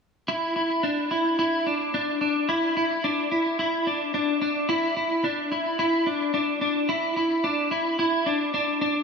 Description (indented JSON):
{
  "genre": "dream pop",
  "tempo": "109 BPM",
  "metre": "4/4",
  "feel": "straight",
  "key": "unclear",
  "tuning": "A4 = 442 Hz",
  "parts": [
    { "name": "clean electric guitar", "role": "solo", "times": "0.3-9.0 s", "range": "D4 to E4", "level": "-22 LUFS", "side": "equal", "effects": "ensemble chorus, digital delay" }
  ],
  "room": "wet lush hall reverb, RT60 3.0 s",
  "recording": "small room ambience",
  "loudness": "-22 LUFS",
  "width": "side -5 dB against mid",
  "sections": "0.3-9.0 A section",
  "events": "none",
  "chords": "none",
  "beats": "| 0.28 0.83 1.39 1.94 | 2.48 3.04 3.59 4.14 | 4.69 5.24 5.79 6.34 | 6.89 7.44 7.99 8.54"
}